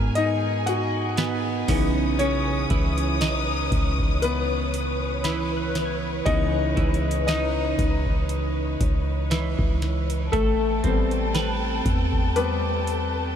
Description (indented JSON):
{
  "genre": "contemporary R&B",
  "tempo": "59 BPM",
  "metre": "4/4",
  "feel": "swing 54% on 16ths",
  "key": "unclear",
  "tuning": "A4 = 440 Hz",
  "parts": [
    { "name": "warm concert grand piano", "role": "accompaniment", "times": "0.0-13.4 s", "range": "E3 to F#5", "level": "-27 LUFS", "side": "left 4 dB", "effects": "lush chorus" },
    { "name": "warm studio string section", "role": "sustained chords", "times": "0.0-13.4 s", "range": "G#4 to D#6", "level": "-30 LUFS", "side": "left 2 dB", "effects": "sidechain pumping" },
    { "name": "twelve-string electric guitar", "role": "arpeggios", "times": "0.0-13.4 s", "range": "C#3 to B4", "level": "-29 LUFS", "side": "right 7 dB", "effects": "analog chorus, analog delay" },
    { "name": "warm 808-style bass", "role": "bass", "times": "0.0-13.4 s", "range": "A1 to G#2", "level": "-27 LUFS", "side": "equal", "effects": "none" },
    { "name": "booming analog drum machine", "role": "drums", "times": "0.2-13.1 s", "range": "hi-hat, kick drum, snare drum", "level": "-27 LUFS", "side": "equal", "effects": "none" },
    { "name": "soft round pluck", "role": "texture", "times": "5.2-13.4 s", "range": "B5 to G#6", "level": "-39 LUFS", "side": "equal", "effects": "chorus, analog delay" }
  ],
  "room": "moderate huge ambient reverb, RT60 7.4 s",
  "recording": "dreamy mix soaked in reverb",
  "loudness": "-21 LUFS",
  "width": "side -8 dB against mid",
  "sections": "0.0-13.4 A section",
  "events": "grand piano solo 0.0-13.4",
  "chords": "0.0 G#m9; 1.7 C#m9; 10.3 Am9",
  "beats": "0.16 1.18 | 2.19 3.21 4.23 5.25 | 6.26 7.28 8.30 9.31 | 10.33 11.35 12.36"
}